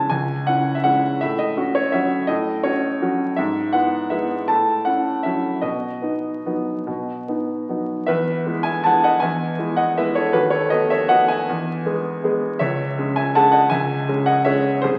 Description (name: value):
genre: classical, piano waltz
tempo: 141-172 BPM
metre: 3/4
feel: rubato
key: E major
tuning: A4 = 440 Hz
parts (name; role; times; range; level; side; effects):
- warm grand piano; solo; 0.0-15.0 s; B#1 to A5; -20 LUFS; equal; none
room: wet recital hall reverb, RT60 1.3 s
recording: very old 78 rpm record, vinyl crackle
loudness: -20 LUFS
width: mono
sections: 0.0-8.1 A section; 8.1-15.0 B section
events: none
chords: 0.0 C#m; 1.2 F#m/A; 3.4 E/G#; 4.5 F#m7/A; 5.6 B; 8.1 E; 10.3 B7/D#; 11.5 E; 12.6 C#m